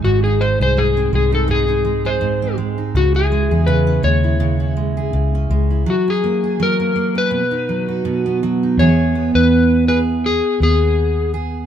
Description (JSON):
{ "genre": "acoustic pop", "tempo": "82 BPM", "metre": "4/4", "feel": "swing 55% on 16ths", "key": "E major", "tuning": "A4 = 439 Hz", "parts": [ { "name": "electric slide guitar", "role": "melody", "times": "0.0-11.3 s", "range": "F#4 to C#5", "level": "-19 LUFS", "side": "left 3 dB", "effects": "none" }, { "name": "fingerpicked steel-string acoustic guitar", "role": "accompaniment", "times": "0.0-11.7 s", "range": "E2 to G#4", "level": "-18 LUFS", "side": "right 4 dB", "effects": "none" }, { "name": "vintage muted fingered electric bass", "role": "bass", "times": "0.0-11.7 s", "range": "G#1 to E2", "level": "-18 LUFS", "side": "left 1 dB", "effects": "none" } ], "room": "light reverb", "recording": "minimal, uncompressed stereo recording", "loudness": "-14 LUFS", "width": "side -9 dB against mid", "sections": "0.0-8.8 A section; 8.8-11.7 B section", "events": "none", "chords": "0.0 G#; 3.0 C#m; 5.9 F#add9; 7.3 B; 8.8 E" }